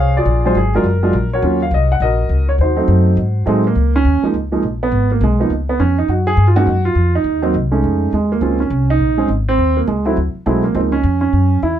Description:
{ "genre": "jazz piano trio", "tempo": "206 BPM", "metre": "4/4", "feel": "swing 62% on 8ths", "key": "Db major", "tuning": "A4 = 440 Hz", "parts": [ { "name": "warm upright piano", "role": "melody", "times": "0.0-11.8 s", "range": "F3 to Gb5", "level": "-16 LUFS", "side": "right 2 dB", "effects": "none" }, { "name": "upright bass", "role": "bass", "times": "0.0-11.8 s", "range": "Gb1 to A2", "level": "-16 LUFS", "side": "left 1 dB", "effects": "none" } ], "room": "light reverb", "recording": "dark, warm production", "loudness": "-13 LUFS", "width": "side -10 dB against mid", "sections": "0.0-3.8 A section; 3.8-11.8 B section", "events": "none", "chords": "0.3 Bb7b13; 1.4 Ebm7; 2.6 Ab7b9; 3.8 Dbsus2; 4.9 Abm; 5.5 Db; 6.1 N.C.; 7.3 Cm; 7.8 F7alt; 8.4 Bbm7; 9.6 Eb7(no3); 10.2 D9; 10.7 Db69", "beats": "| 0.26 0.56 0.85 1.14 | 1.43 1.72 2.01 2.30 | 2.59 2.88 3.18 3.47 | 3.76 4.05 4.34 4.63 | 4.92 5.21 5.50 5.80 | 6.09 6.38 6.67 6.96 | 7.25 7.54 7.83 8.12 | 8.42 8.71 9.00 9.29 | 9.58 9.87 10.16 10.45 | 10.74 11.04 11.33 11.62" }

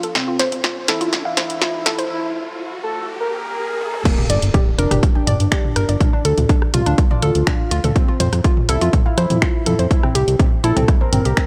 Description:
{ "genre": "melodic techno", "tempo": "123 BPM", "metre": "4/4", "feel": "straight", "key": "unclear", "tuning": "A4 = 440 Hz", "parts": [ { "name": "unison lead", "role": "melody", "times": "0.0-11.5 s", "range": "Bb3 to Bb4", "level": "-27 LUFS", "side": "equal", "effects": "sidechain pumping, analog delay" }, { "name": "woody wave-folded pluck", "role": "arpeggios", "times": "0.0-11.5 s", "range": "C4 to G5", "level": "-25 LUFS", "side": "equal", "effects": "chorus, sidechain pumping, analog delay" }, { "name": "punchy analog drum machine", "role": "drums", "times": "0.0-11.5 s", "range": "crash cymbal, finger snaps, hi-hat, rim click, snare drum, toms", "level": "-24 LUFS", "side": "equal", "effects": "high-pass filter on snare, studio reverb, sidechain pumping on hats, high-pass filter on hats, sidechain pumping on toms, high-pass filter on toms, sidechain pumping on cymbals, high-pass filter on cymbals" }, { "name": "riser and impact", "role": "sound effects", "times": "0.0-6.0 s", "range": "none", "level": "-33 LUFS", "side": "equal", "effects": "none" }, { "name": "electronic kick drum", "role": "drums", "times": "4.1-11.5 s", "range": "none", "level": "-18 LUFS", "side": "equal", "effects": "overdrive, studio reverb" }, { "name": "fat analog bass", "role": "bass", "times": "4.3-11.3 s", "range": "F1 to F2", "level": "-20 LUFS", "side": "equal", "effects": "sidechain pumping" } ], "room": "light reverb, digital ambience", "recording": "dry, gritty hardware recording, transformer saturation, high-pass filter", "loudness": "-18 LUFS", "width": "mono", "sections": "0.0-4.1 A section; 4.1-11.5 B section", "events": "build-up 0.0-4.1; drum fill 0.0-2.1, 3.8; riser 0.0-4.1; filter sweep 0.0-4.1; break 2.1-4.1; drop 4.1-11.5; impact 4.1-6.0", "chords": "0.2 F; 2.1 N.C.; 4.1 Gm; 6.0 Dm; 8.0 F; 9.9 C7", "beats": "| 0.15 0.64 1.13 1.61 | 2.10 2.59 3.08 3.57 | 4.05 4.54 5.03 5.52 | 6.01 6.49 6.98 7.47 | 7.96 8.45 8.93 9.42 | 9.91 10.40 10.88 11.37" }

